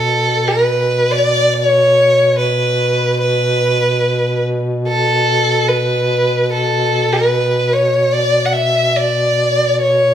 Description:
caucasian folk, Caucasian lament; 72 BPM; 4/4; rubato; B minor; A4 = 439 Hz
warm violin; melody; 0.0-10.1 s; A4 to F#5; -13 LUFS; equal
mellow duduk; drone; 0.0-10.1 s; B2; -19 LUFS; equal
wet recital hall reverb, RT60 1.6 s; -12 LUFS; side -10 dB against mid
0.0-10.1 A section

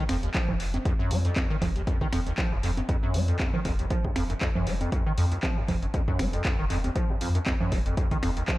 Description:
acid house; 118 BPM; 4/4; swing 55% on 16ths; F phrygian; A4 = 440 Hz
liquid acid bass; riff; 0.0-8.6 s; Eb2 to Ab3; -30 LUFS; equal; tube saturation, analog chorus, vintage 12-bit sampler grit, sidechain pumping, dub echo
warm sub bass; bass; 0.1-8.4 s; F1 to F2; -29 LUFS; equal; sidechain pumping
punchy analog drum machine; drums; 0.1-8.6 s; congas, finger snaps, handclaps, hi-hat; -33 LUFS; right 1 dB; dub echo
electronic kick drum; drums; 0.3-8.6 s; -28 LUFS; equal
light reverb; echo-heavy mix; -24 LUFS; side -17 dB against mid
0.0-8.6 A section

